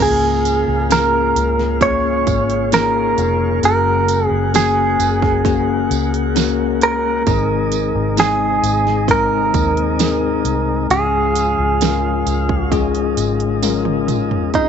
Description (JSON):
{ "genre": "pop ballad", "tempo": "66 BPM", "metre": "4/4", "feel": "straight", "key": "Db major", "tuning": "A4 = 440 Hz", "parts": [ { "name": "direct-recorded clean electric guitar", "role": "melody", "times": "0.0-14.7 s", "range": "Eb4 to Db5", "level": "-17 LUFS", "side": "right 4 dB", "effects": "none" }, { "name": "bell-like tine electric piano", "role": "accompaniment", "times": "0.0-14.7 s", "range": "Ab2 to Bb4", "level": "-20 LUFS", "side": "left 14 dB", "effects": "slow stereo tremolo" }, { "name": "tonewheel organ", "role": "sustained chords", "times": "0.0-14.7 s", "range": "C3 to C5", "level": "-26 LUFS", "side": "right 1 dB", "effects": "slow rotary speaker" }, { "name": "vintage muted fingered electric bass", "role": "bass", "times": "0.0-14.5 s", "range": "F1 to Eb2", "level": "-22 LUFS", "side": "right 1 dB", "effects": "none" }, { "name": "pop drum kit", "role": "drums", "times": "0.0-14.7 s", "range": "crash cymbal, hi-hat, kick drum, snare drum, toms", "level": "-22 LUFS", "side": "right 6 dB", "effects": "overdrive" }, { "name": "tambourine", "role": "percussion", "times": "0.0-14.3 s", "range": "none", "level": "-29 LUFS", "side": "right 18 dB", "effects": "none" } ], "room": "light reverb, digital ambience", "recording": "1960s-style stereo with parts hard left and right, nothing above 7.8 kHz", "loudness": "-14 LUFS", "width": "side -7 dB against mid", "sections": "0.0-14.5 A section", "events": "drum fill 13.6-14.5", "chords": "0.0 Db6; 3.6 Gbadd9; 7.3 Ab; 10.9 Db", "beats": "0.90 1.81 2.72 | 3.63 4.54 5.45 6.36 | 7.27 8.18 9.09 9.99 | 10.90 11.81 12.72 13.63 | 14.54" }